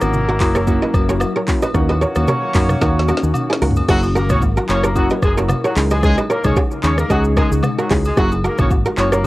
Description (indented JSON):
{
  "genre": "afrobeats",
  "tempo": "112 BPM",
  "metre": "4/4",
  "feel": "swing 55% on 16ths",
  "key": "F# mixolydian",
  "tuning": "A4 = 441 Hz",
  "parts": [
    { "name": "mellow horn section", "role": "second line", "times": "0.0-9.3 s", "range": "F#3 to C#5", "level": "-23 LUFS", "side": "equal", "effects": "analog delay" },
    { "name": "warm analog keys", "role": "accompaniment", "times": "0.0-9.3 s", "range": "G#3 to G#4", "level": "-22 LUFS", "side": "equal", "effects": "chorus" },
    { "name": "glassy FM pad", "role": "sustained chords", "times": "0.0-9.3 s", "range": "C#3 to A#4", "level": "-27 LUFS", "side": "left 3 dB", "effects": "ensemble chorus, built-in reverb, phaser" },
    { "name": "fingered electric bass", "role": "bass", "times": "0.0-9.3 s", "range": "F#1 to F#2", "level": "-19 LUFS", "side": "equal", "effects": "none" },
    { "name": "afro-pop drum kit", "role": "drums", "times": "0.0-9.3 s", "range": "crash cymbal, handclaps, hi-hat, kick drum, rim click, shaker, snare drum, toms", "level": "-19 LUFS", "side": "equal", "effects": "none" },
    { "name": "agogo bells and woodblock", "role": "percussion", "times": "0.0-9.3 s", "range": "none", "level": "-28 LUFS", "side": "left 2 dB", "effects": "none" },
    { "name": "kora", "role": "riff", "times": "0.3-9.2 s", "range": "E4 to D#5", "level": "-22 LUFS", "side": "right 2 dB", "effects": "analog delay" }
  ],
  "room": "light reverb",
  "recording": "home recording on cassette",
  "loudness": "-14 LUFS",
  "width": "side -18 dB against mid",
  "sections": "0.0-3.9 A section; 3.9-9.3 B section",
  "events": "drum fill 2.8-3.9",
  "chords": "0.0 F#7; 1.7 D#m7; 3.9 F#7; 5.8 C#sus2; 8.2 F#7"
}